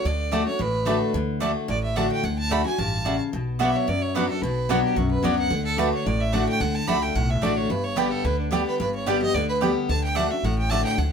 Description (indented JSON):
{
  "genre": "bluegrass",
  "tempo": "220 BPM",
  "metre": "4/4",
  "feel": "straight",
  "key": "D major",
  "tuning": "A4 = 441 Hz",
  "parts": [
    { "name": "clear fiddle", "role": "melody", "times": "0.0-11.1 s", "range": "D4 to B5", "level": "-28 LUFS", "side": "right 3 dB", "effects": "plate reverb" },
    { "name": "picked steel-string acoustic guitar", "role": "accompaniment", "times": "0.0-11.1 s", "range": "F#2 to G4", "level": "-25 LUFS", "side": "left 3 dB", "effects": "none" },
    { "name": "upright bass", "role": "bass", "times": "0.0-11.1 s", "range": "G1 to F#2", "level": "-28 LUFS", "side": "equal", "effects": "none" },
    { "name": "mandolin", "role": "stabs", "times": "0.3-10.8 s", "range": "A3 to A5", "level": "-26 LUFS", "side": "right 4 dB", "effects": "none" }
  ],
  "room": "moderate studio reverb, RT60 0.5 s",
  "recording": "close, detailed microphones",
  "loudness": "-21 LUFS",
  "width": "side -6 dB against mid",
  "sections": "0.0-3.3 A section; 3.3-11.1 B section",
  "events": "none",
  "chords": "0.0 D; 3.3 Bm; 5.5 D; 7.7 G; 9.9 D"
}